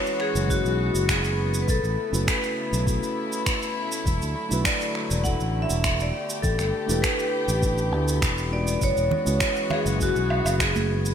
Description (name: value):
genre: sunset chillout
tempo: 101 BPM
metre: 4/4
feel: straight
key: F# minor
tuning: A4 = 440 Hz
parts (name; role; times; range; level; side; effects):
- vibraphone with hard mallets; melody; 0.0-11.1 s; F#4 to F#5; -28 LUFS; left 1 dB; digital delay
- mellow tine electric piano; accompaniment; 0.0-11.1 s; G#3 to B4; -31 LUFS; moving between left 4 dB and right 5 dB; auto-pan, digital delay
- dark chamber string section; sustained chords; 0.0-11.1 s; C#3 to G4; -32 LUFS; left 2 dB; none
- electronic shaker, finger snaps and woodblock; drums; 0.1-11.1 s; none; -28 LUFS; right 1 dB; gated reverb
- fingered electric bass; bass; 0.4-11.1 s; E1 to D2; -26 LUFS; equal; none
- electronic kick drum; drums; 0.5-10.7 s; none; -27 LUFS; equal; none
- congas; percussion; 9.1-10.9 s; none; -32 LUFS; right 5 dB; none
room: moderate lush hall reverb, RT60 2.7 s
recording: bright 1980s-style digital production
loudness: -22 LUFS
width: side -8 dB against mid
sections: 0.0-11.1 A section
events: none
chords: 0.0 F#9sus4; 1.7 B9sus4; 4.1 E9sus4; 6.1 A9sus4; 8.8 F#9sus4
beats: 0.50 1.09 | 1.69 2.28 2.87 3.47 | 4.06 4.66 5.25 5.84 | 6.44 7.03 7.63 8.22 | 8.81 9.41 10.00 10.60